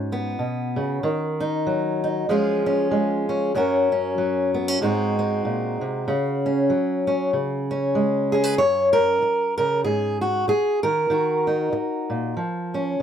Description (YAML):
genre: folk, solo fingerstyle acoustic guitar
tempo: 95 BPM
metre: 4/4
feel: swing 58% on 8ths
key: F# major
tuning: A4 = 440 Hz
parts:
  - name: fingerpicked steel-string acoustic guitar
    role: solo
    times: 0.0-13.0 s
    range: F#2 to C#5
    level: -20 LUFS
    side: equal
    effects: none
room: light reverb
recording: close, detailed microphones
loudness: -20 LUFS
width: side -8 dB against mid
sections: 0.0-8.6 A section; 8.6-13.0 B section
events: none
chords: 0.0 G#m; 1.0 D#m; 2.3 C#/E#; 3.5 F#; 4.8 G#7; 6.1 C#sus4; 7.3 C#5; 8.6 F#; 9.8 G#5; 11.1 D#m; 12.4 C#/E#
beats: 0.39 | 1.02 1.65 2.28 2.91 | 3.54 4.17 4.80 5.43 | 6.07 6.70 7.33 7.96 | 8.59 9.22 9.85 10.48 | 11.11 11.74 12.37 13.00